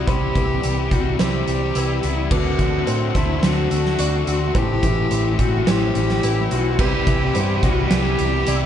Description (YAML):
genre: post-rock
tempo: 107 BPM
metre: 4/4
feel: straight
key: C lydian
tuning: A4 = 440 Hz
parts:
  - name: rich cello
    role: melody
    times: 0.0-8.7 s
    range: E4 to G4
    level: -24 LUFS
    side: right 1 dB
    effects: tape echo
  - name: pedal steel guitar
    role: sustained chords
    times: 0.0-8.7 s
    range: B3 to D6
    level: -36 LUFS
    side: right 3 dB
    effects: none
  - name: clean electric guitar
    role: arpeggios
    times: 0.0-8.7 s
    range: A2 to F#4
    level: -29 LUFS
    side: left 2 dB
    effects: ensemble chorus, tape echo
  - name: felt-muted upright piano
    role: arpeggios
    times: 0.0-8.7 s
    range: B4 to D5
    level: -32 LUFS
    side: right 7 dB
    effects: tape echo
  - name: distorted electric guitar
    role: riff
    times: 0.0-8.7 s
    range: A2 to A3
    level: -25 LUFS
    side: left 12 dB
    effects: distortion
  - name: hollow-body short-scale picked electric bass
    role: bass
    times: 0.0-8.7 s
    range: A1 to A2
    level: -22 LUFS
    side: equal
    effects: none
  - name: huge arena drum kit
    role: drums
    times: 0.1-8.6 s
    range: crash cymbal, hi-hat, kick drum, snare drum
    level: -23 LUFS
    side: right 1 dB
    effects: none
  - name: tight distorted guitar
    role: riff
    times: 6.8-8.7 s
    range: E4 to B4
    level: -29 LUFS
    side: right 11 dB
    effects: distortion
room: light reverb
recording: dark, warm production, nothing above 10.8 kHz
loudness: -17 LUFS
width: side -9 dB against mid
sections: 0.0-8.7 A section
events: build-up 0.0-8.7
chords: 0.0 Cmaj7; 2.3 D7; 4.6 Am7; 6.8 Cmaj7